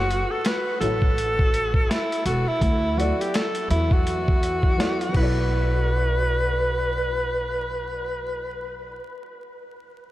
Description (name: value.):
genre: hip hop, jazz-hop.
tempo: 83 BPM.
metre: 4/4.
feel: swing 59% on 16ths.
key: B minor.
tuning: A4 = 440 Hz.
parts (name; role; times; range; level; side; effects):
clear alto saxophone; melody; 0.0-9.0 s; E4 to B4; -25 LUFS; equal; analog delay.
upright bass; bass; 0.0-9.0 s; E1 to E2; -26 LUFS; equal; none.
boom bap sampler-style drum kit; drums; 0.1-5.3 s; crash cymbal, hi-hat, kick drum, snare drum; -24 LUFS; equal; none.
dark grand piano; accompaniment; 0.8-9.1 s; F#3 to E5; -32 LUFS; equal; lush chorus.
room: moderate huge ambient reverb, RT60 8.6 s.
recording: dreamy mix soaked in reverb, vinyl crackle.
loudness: -20 LUFS.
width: side -15 dB against mid.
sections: 0.0-5.5 A section; 5.5-8.4 B section.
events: none.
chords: 0.0 F#m7; 2.6 Dadd9; 5.1 Bm7.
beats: 0.45 1.17 1.89 | 2.61 3.34 4.06 4.78 | 5.51 6.23 6.95 7.67.